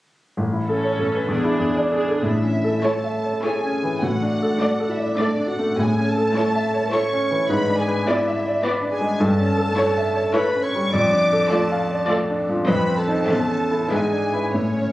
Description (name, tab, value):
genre	classical, romantic movement for piano and orchestra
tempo	90-108 BPM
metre	3/4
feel	rubato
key	A major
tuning	A4 = 440 Hz
part	clear concert grand piano	melody	0.4-14.9 s	A1 to F5	-21 LUFS	equal	none
part	dark studio cello section	bass	0.4-14.9 s	E2 to A2	-27 LUFS	right 1 dB	none
part	rich symphonic viola section	accompaniment	0.7-14.4 s	A3 to B4	-26 LUFS	right 1 dB	none
part	dark clarinet	second line	2.2-14.9 s	C#4 to D5	-24 LUFS	equal	none
part	warm symphonic violin section	second line	2.2-14.9 s	C#5 to D6	-28 LUFS	equal	none
part	timpani	percussion	2.2-4.9, 14.5-14.9 s	A2	-33 LUFS	equal	none
part	rich symphonic violin section	melody	2.8-14.4 s	C#5 to E5	-29 LUFS	left 1 dB	none
room	moderate scoring stage reverb, RT60 1.6 s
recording	recorded on a phone in the room, studio reverb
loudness	-18 LUFS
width	side -16 dB against mid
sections	0.4-2.2 A section; 2.2-14.9 B section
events	timpani fill 14.5-14.9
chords	0.4 A; 1.3 E7; 2.2 A; 4.0 D/A; 5.8 A; 7.5 E7/G#; 9.2 A7/G; 10.9 Dm/F; 12.7 F7; 13.3 A/E; 13.9 E7/G#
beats	| 0.38 0.98 1.59 | 2.23 2.84 3.43 | 4.03 4.61 5.19 | 5.78 6.35 6.92 | 7.49 8.08 8.65 | 9.20 9.77 10.34 | 10.93 11.50 12.09 | 12.68 13.28 13.91 | 14.54